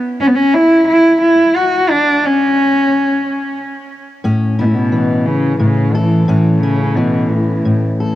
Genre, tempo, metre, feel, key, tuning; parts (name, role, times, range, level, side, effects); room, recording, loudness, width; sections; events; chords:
folk; 59 BPM (dotted quarters); 6/8; straight; A major; A4 = 439 Hz
warm cello; melody; 0.2-8.1 s; A2 to F#4; -12 LUFS; equal; cassette tape, tape echo
fingerpicked steel-string acoustic guitar; accompaniment; 4.2-8.2 s; A2 to A4; -14 LUFS; left 1 dB; cassette tape
little or no reverb; home recording on cassette; -11 LUFS; side -14 dB against mid
0.0-4.2 A section; 4.2-8.2 B section
0.0 N.C.; 4.2 A